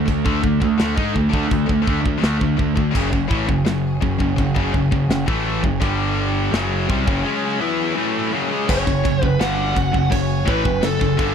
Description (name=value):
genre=heavy metal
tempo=84 BPM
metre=4/4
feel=straight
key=F# minor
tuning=A4 = 440 Hz
part: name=clear symphonic string section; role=sustained chords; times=0.0-11.3 s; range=D3 to G#5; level=-34 LUFS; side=equal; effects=none
part: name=fuzz guitar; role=riff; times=0.0-11.3 s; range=F#2 to E4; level=-26 LUFS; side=right 1 dB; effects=distortion
part: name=scooped high-gain guitar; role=riff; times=0.0-11.3 s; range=F#2 to E4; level=-24 LUFS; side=right 11 dB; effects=distortion
part: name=tight distorted guitar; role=riff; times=0.0-11.3 s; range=F#2 to E4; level=-23 LUFS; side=left 12 dB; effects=distortion
part: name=growling picked electric bass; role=bass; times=0.0-11.3 s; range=F#1 to G#2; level=-24 LUFS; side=equal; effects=overdrive
part: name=modern studio drum kit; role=drums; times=0.1-11.3 s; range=china cymbal, crash cymbal, kick drum, snare drum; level=-22 LUFS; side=equal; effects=none
part: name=bluesy overdriven lead guitar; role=melody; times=8.7-11.3 s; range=A4 to F#5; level=-22 LUFS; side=right 1 dB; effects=distortion, slapback echo
room=small room ambience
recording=dry, close 1970s-style studio recording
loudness=-17 LUFS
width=side -7 dB against mid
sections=0.0-8.7 A section; 8.7-11.3 B section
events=none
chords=0.0 D5; 2.9 F#m; 5.8 G5; 6.5 F#m